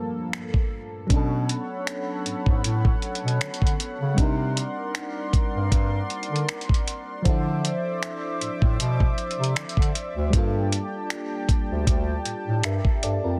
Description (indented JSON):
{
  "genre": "contemporary R&B",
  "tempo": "78 BPM",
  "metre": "4/4",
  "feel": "swing 54% on 16ths",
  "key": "unclear",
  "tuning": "A4 = 442 Hz",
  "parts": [
    { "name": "mellow FM electric piano", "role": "accompaniment", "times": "0.0-13.4 s", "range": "F3 to E5", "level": "-34 LUFS", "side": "equal", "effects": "chorus, phaser" },
    { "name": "chorused pulse-width pad", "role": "sustained chords", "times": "0.0-13.4 s", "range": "G2 to D6", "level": "-34 LUFS", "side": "equal", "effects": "none" },
    { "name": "dusty soul sampler-style drum kit", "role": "drums", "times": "0.3-13.2 s", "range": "finger snaps, hi-hat, kick drum", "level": "-26 LUFS", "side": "equal", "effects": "soft clipping on snare" },
    { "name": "warm bass clarinet", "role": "bass", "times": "1.1-13.4 s", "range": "D2 to D3", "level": "-28 LUFS", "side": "equal", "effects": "none" }
  ],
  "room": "light reverb",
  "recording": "dense, heavily limited modern master",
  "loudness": "-25 LUFS",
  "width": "mono",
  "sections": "0.0-1.1 A section; 1.1-13.4 B section",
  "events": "none",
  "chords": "0.0 Gm9; 1.1 Bm9; 4.2 Cm9; 7.3 Dm9; 10.3 Gm9"
}